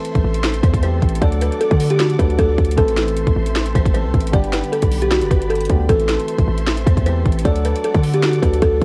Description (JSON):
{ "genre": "hip hop, trap", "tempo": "154 BPM", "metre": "4/4", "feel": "half-time", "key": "A dorian", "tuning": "A4 = 440 Hz", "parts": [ { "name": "buzzing kalimba", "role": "melody", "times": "0.0-8.8 s", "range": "F#4 to D5", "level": "-24 LUFS", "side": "equal", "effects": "low-pass filter" }, { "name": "dark grand piano", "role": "accompaniment", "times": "0.0-8.8 s", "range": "D3 to A4", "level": "-27 LUFS", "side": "equal", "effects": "low-pass filter, cassette tape" }, { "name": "dark symphonic string section", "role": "sustained chords", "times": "0.0-8.8 s", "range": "G4 to D6", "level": "-35 LUFS", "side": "equal", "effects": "cassette tape" }, { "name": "trap drum kit", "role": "drums", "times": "0.0-8.8 s", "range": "hi-hat, kick drum, snare drum", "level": "-21 LUFS", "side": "equal", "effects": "cassette tape" }, { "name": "hard-hitting 808-style bass", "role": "bass", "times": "0.2-8.8 s", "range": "F#1 to D3", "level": "-21 LUFS", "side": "equal", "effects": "none" } ], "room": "little or no reverb", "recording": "home recording on cassette", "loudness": "-17 LUFS", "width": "mono", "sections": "0.0-8.8 A section", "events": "none", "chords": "0.0 Am; 1.2 D; 2.8 Am; 4.3 G; 5.9 Am; 7.5 D" }